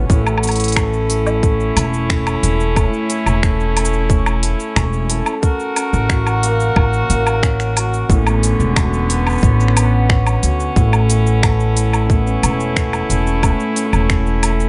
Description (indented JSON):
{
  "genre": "folktronica",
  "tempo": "90 BPM",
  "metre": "4/4",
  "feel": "straight",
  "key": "A major",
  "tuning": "A4 = 439 Hz",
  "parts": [
    { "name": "dark string quartet", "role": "sustained chords", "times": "0.0-14.7 s", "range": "D3 to A#4", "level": "-25 LUFS", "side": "equal", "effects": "none" },
    { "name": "cimbalom", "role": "arpeggios", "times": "0.0-14.7 s", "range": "A2 to A4", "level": "-23 LUFS", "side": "equal", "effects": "vintage 12-bit sampler grit, digital delay" },
    { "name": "upright bass", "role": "bass", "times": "0.0-14.7 s", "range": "E1 to D2", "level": "-19 LUFS", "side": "equal", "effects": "none" },
    { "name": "electronic kick drum", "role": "drums", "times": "0.1-14.2 s", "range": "none", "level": "-18 LUFS", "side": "equal", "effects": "studio reverb" },
    { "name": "organic electronic drum kit", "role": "drums", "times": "0.1-14.7 s", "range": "finger snaps, hi-hat, shaker, woodblock", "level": "-23 LUFS", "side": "equal", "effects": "studio reverb" }
  ],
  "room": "small room ambience",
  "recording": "nothing above 10.7 kHz",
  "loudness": "-16 LUFS",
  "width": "mono",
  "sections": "0.1-14.7 A section",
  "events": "none",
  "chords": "0.1 A; 5.4 F#/A; 8.1 Bmadd9; 10.8 A"
}